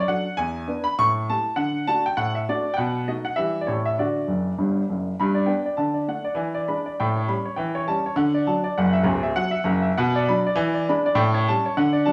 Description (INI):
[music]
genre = jazz, stride piano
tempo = 200 BPM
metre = 4/4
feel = swing 59% on 8ths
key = D major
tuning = A4 = 440 Hz
[part]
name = warm upright piano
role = solo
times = 0.0-12.1 s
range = C#1 to C#6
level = -23 LUFS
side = equal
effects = none
[sound]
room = moderate stone room reverb, RT60 1.0 s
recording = band playing live in one room, studio ambience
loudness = -23 LUFS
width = mono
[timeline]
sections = 0.0-5.2 A section; 5.2-12.1 B section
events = upright piano fill 4.3-5.2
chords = 0.4 E7; 1.0 A7; 1.6 D; 2.8 B7; 3.4 Em; 3.7 A7; 4.0 D; 5.2 G; 5.8 D; 6.4 E7; 7.0 A9; 7.6 A7/E; 8.2 D; 8.8 F#7; 10.0 Bm; 10.6 E7; 11.2 A7